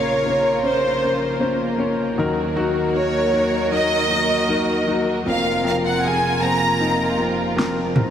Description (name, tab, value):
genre	pop ballad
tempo	78 BPM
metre	4/4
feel	straight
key	Bb minor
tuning	A4 = 440 Hz
part	warm symphonic violin section	melody	0.0-7.2 s	C5 to Bb5	-21 LUFS	right 1 dB	none
part	warm concert grand piano	accompaniment	0.0-8.1 s	F1 to Db5	-22 LUFS	left 2 dB	none
part	dark studio string section	sustained chords	0.0-8.1 s	C3 to Bb4	-24 LUFS	equal	none
part	pop drum kit	drums	7.6-8.1 s	snare drum, toms	-20 LUFS	equal	overdrive
room	wet lush hall reverb, RT60 3.2 s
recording	dreamy mix soaked in reverb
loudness	-17 LUFS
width	side -9 dB against mid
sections	0.0-8.1 A section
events	drum fill 7.6-8.1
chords	0.0 Bbmadd9; 2.2 Ebm; 5.3 Fsus4